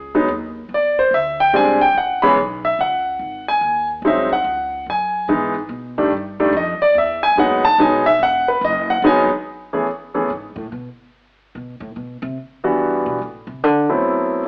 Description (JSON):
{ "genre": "jazz", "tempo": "144 BPM", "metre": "3/4", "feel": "swing 65% on 8ths", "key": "E major", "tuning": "A4 = 441 Hz", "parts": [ { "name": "clear concert grand piano", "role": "melody", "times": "0.0-10.3, 12.6-14.5 s", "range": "D#3 to B5", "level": "-18 LUFS", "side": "equal", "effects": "none" }, { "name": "upright bass", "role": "bass", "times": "0.0-13.9 s", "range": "E1 to D3", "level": "-29 LUFS", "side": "equal", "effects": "none" } ], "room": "moderate large studio reverb, RT60 1.0 s", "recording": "band playing live in one room, AM radio sound, faint mains hum", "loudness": "-18 LUFS", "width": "mono", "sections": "0.0-9.4 A section; 9.4-14.5 A section", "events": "grand piano solo 0.0-9.4; upright bass solo 9.4-14.5", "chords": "0.0 B69 (rootless); 0.7 E7alt; 2.0 Aadd9; 3.2 G#7; 4.5 C#5; 5.7 B7alt; 7.0 Emaj9; 9.4 Amaj7(no3); 10.7 Asus2; 11.9 Cmaj9#11; 13.2 D13" }